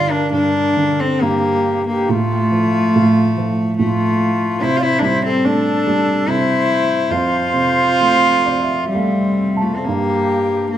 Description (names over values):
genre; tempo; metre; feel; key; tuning
celtic folk, Celtic slow air; 61-73 BPM; 3/4; rubato; unclear; A4 = 440 Hz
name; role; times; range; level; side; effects
rich cello; melody; 0.0-10.8 s; G3 to F4; -16 LUFS; left 1 dB; none
breathy mellow jazz flute; second line; 0.0-10.8 s; C4 to D5; -22 LUFS; left 1 dB; none
dark upright piano; accompaniment; 0.0-10.8 s; F2 to A5; -20 LUFS; right 3 dB; none
room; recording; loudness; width
moderate recital hall reverb, RT60 1.4 s; minimal, uncompressed stereo recording; -14 LUFS; side -11 dB against mid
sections
0.0-9.8 A section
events
upright piano fill 8.0-9.8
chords
0.0 G5; 2.1 F/A; 4.6 C6; 7.1 F; 9.8 Gm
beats
0.32 1.22 | 2.09 2.94 3.78 | 4.61 5.43 6.26 | 7.10 7.96 8.90 | 9.84 10.73